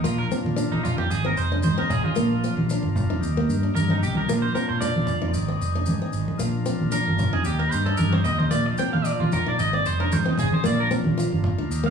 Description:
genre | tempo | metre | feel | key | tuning
highlife guitar band | 113 BPM | 4/4 | swing 55% on 16ths | Bb mixolydian | A4 = 440 Hz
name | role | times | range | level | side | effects
picked plugged-in acoustic archtop guitar | accompaniment | 0.0-11.9 s | Bb3 to F4 | -28 LUFS | left 1 dB | none
overdriven tonewheel organ | sustained chords | 0.0-11.9 s | C4 to Bb4 | -34 LUFS | left 1 dB | slow rotary speaker
electric guitar at the edge of break-up | arpeggios | 0.0-11.9 s | Eb4 to G5 | -27 LUFS | right 2 dB | none
fingered electric bass | bass | 0.0-11.9 s | F1 to Bb2 | -25 LUFS | equal | none
maracas | percussion | 0.1-11.8 s | none | -39 LUFS | left 3 dB | none
congas | percussion | 0.5-11.6 s | none | -26 LUFS | right 1 dB | none
room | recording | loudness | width
wet large studio reverb, RT60 1.1 s | band playing live in one room, small room ambience | -21 LUFS | side -6 dB against mid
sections
0.0-11.9 A section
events
clean electric guitar solo 0.0-11.9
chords
0.0 Bb; 1.1 Ab; 2.2 Bb; 3.2 Eb; 4.3 Bb; 5.3 Ab; 6.4 Bb; 7.5 Eb; 8.5 Bb; 9.6 Ab; 10.6 Bb

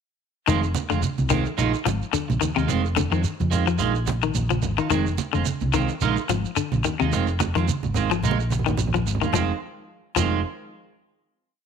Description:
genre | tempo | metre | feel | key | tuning
afrobeat | 108 BPM | 4/4 | swing 55% on 16ths | F dorian | A4 = 440 Hz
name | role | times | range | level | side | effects
clean electric guitar | arpeggios | 0.5-10.3 s | C3 to F3 | -26 LUFS | left 11 dB | none
clean electric guitar | stabs | 0.5-10.4 s | Eb3 to F4 | -27 LUFS | right 11 dB | wide subtle chorus
hollow-body short-scale fingered electric bass | bass | 0.5-10.4 s | F1 to F2 | -25 LUFS | equal | none
cajon | drums | 0.5-10.3 s | none | -33 LUFS | left 3 dB | none
shekere | percussion | 0.5-10.3 s | none | -32 LUFS | right 5 dB | none
congas | percussion | 0.7-10.3 s | none | -29 LUFS | right 7 dB | none
room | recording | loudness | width
light reverb, small room ambience | 1960s-style stereo with parts hard left and right | -21 LUFS | side -7 dB against mid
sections
0.5-9.3 groove; 9.3-11.5 final chord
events
drum fill 8.2-9.3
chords
0.5 Fm7; 1.6 Bb7sus4; 2.7 Fm7; 3.8 Bb7sus4; 4.9 Fm7; 6.0 Bb7sus4; 7.1 Fm7; 8.2 Bb7sus4; 9.3 Fm7

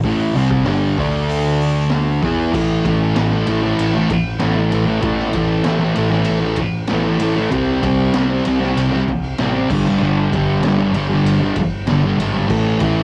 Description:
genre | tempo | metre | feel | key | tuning
garage rock duo or trio | 96 BPM | 4/4 | straight | unclear | A4 = 439 Hz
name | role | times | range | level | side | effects
thick fuzz guitar | riff | 0.0-13.0 s | G2 to E4 | -18 LUFS | equal | distortion
growling picked electric bass | bass | 0.0-13.0 s | G1 to E2 | -26 LUFS | equal | overdrive
raw garage drum kit | drums | 0.0-13.0 s | crash cymbal, hi-hat, kick drum, ride cymbal, snare drum | -27 LUFS | equal | cassette tape
room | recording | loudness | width
moderate booth ambience, RT60 0.2 s | home recording on cassette | -17 LUFS | mono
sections
0.0-2.5 A section; 2.5-13.0 B section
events
none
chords
0.0 A5; 1.0 D5; 2.2 E5; 2.5 A5; 7.5 C5; 9.7 G5; 12.5 A5

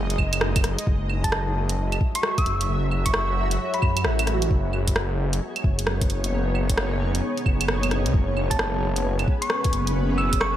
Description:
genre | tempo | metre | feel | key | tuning
future garage | 132 BPM | 4/4 | swing 64% on 16ths | unclear | A4 = 438 Hz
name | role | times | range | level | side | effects
granular cloud pad | sustained chords | 0.0-10.6 s | F#3 to E5 | -29 LUFS | equal | built-in reverb, ensemble chorus, sidechain pumping
swelling detuned saw bass | bass | 0.0-10.6 s | F#1 to F#2 | -25 LUFS | equal | tube saturation, sidechain pumping
garage drum kit | drums | 0.1-10.5 s | claves, hi-hat, rim click | -28 LUFS | right 1 dB | studio reverb
electronic kick drum | drums | 0.2-10.4 s | none | -23 LUFS | equal | studio reverb
wind-like tuned noise texture | texture | 1.9-10.6 s | G#3 to G#4 | -38 LUFS | left 1 dB | built-in reverb
thumb-piano-like synth pluck | melody | 1.2-4.4, 8.5-10.6 s | A5 to E6 | -28 LUFS | equal | chorus, tape echo
room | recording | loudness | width
moderate plate reverb, RT60 1.9 s | dreamy mix soaked in reverb | -21 LUFS | side -12 dB against mid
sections
0.9-10.6 A section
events
none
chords
0.0 Emaj7/F# (rootless); 0.9 F#m7; 4.5 Badd9/F#; 8.1 Aadd9/F# (rootless)

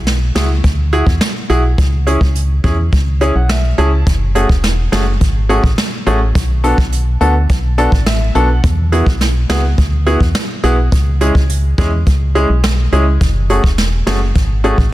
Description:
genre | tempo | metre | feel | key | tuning
dancehall | 105 BPM | 4/4 | straight | F# minor | A4 = 438 Hz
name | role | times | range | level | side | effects
organ-like FM bass | bass | 0.0-14.9 s | E1 to E2 | -14 LUFS | equal | none
jazz brush drum kit | drums | 0.1-14.9 s | hi-hat, kick drum, rim click, snare drum | -16 LUFS | equal | soft clipping on snare
warm grand piano | accompaniment | 0.4-14.8 s | G#3 to A5 | -18 LUFS | equal | sidechain pumping
room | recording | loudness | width
studio ambience | dense, heavily limited modern master | -11 LUFS | side -16 dB against mid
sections
0.0-4.1 A section; 4.1-14.9 A section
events
grand piano fill 2.9-4.1, 7.5-8.6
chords
0.0 Eadd9; 1.8 C#m; 4.1 F#madd9; 6.4 Bm7; 8.6 Eadd9; 10.9 C#m; 13.2 F#madd9

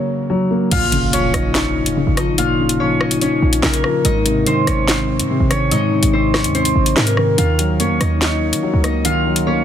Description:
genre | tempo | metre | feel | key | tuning
hip hop, drill | 144 BPM | 4/4 | half-time | Bb minor | A4 = 444 Hz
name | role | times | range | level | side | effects
dark concert grand piano | accompaniment | 0.0-9.6 s | Ab2 to Eb5 | -19 LUFS | equal | low-pass filter
concert harp | melody | 0.7-9.6 s | Bb3 to F5 | -19 LUFS | left 3 dB | low-pass filter, ping-pong delay
short 808-style bass | bass | 0.7-9.6 s | Ab1 to Eb3 | -20 LUFS | right 1 dB | none
drill drum kit | drums | 0.7-9.5 s | crash cymbal, handclaps, hi-hat, rim click, snare drum | -20 LUFS | left 1 dB | none
impact | sound effects | 0.7-2.4 s | none | -27 LUFS | right 1 dB | none
room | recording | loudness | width
little or no reverb | dense, heavily limited modern master | -14 LUFS | side -9 dB against mid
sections
0.7-9.6 A section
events
break 0.0-0.7; impact 0.7-2.4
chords
0.0 Gb; 0.7 Bbm; 4.0 Ab; 7.4 Ebm

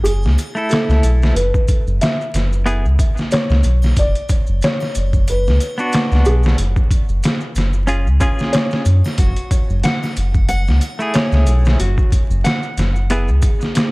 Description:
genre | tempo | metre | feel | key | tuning
trip hop | 92 BPM | 4/4 | swing 56% on 16ths | F# minor | A4 = 438 Hz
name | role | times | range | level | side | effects
felt-muted upright piano | melody | 0.0-9.1 s | G#4 to E5 | -24 LUFS | equal | dub echo
round analog bass | bass | 0.0-13.4 s | F#1 to F#2 | -14 LUFS | equal | none
triangle and maracas | percussion | 0.0-13.9 s | none | -37 LUFS | right 1 dB | none
trip hop sampler-style drum kit | drums | 0.1-13.9 s | hi-hat, kick drum, snare drum | -18 LUFS | equal | overdrive
semi-hollow electric guitar | accompaniment | 0.6-13.3 s | A3 to A4 | -23 LUFS | equal | tremolo, tape echo
nylon-string guitar | arpeggios | 9.2-13.9 s | F#4 to F#5 | -26 LUFS | equal | tape echo
room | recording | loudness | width
digital ambience | vinyl crackle | -14 LUFS | side -24 dB against mid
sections
0.0-13.9 A section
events
none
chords
0.0 F#m7; 1.4 E5/F#; 4.0 Bm/F#; 6.6 C#/F#; 9.2 F#m7; 11.8 N.C.

